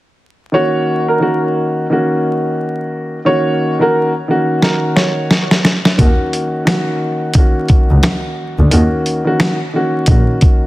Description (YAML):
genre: hip hop, boom-bap hip-hop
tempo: 88 BPM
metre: 4/4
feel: swing 60% on 16ths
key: Eb minor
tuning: A4 = 441 Hz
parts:
  - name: clear upright piano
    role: melody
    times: 0.5-5.5 s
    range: Bb4 to Db5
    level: -18 LUFS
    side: right 1 dB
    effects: high-pass filter, low-pass filter, digital delay
  - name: dark grand piano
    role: accompaniment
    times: 0.5-10.7 s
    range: Eb3 to Gb4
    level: -16 LUFS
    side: equal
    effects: cassette tape, high-pass filter, low-pass filter
  - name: dusty soul sampler-style drum kit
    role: drums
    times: 4.6-10.6 s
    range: hi-hat, kick drum, snare drum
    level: -12 LUFS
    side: equal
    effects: soft clipping on snare
  - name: rich double bass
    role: bass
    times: 6.0-10.2 s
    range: Bb1 to Eb2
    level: -12 LUFS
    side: equal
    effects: none
room: light reverb, small room ambience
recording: dense, heavily limited modern master, vinyl crackle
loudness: -12 LUFS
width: side -18 dB against mid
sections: 0.5-10.7 A section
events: drum fill 4.6-6.0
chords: 0.5 Ebm7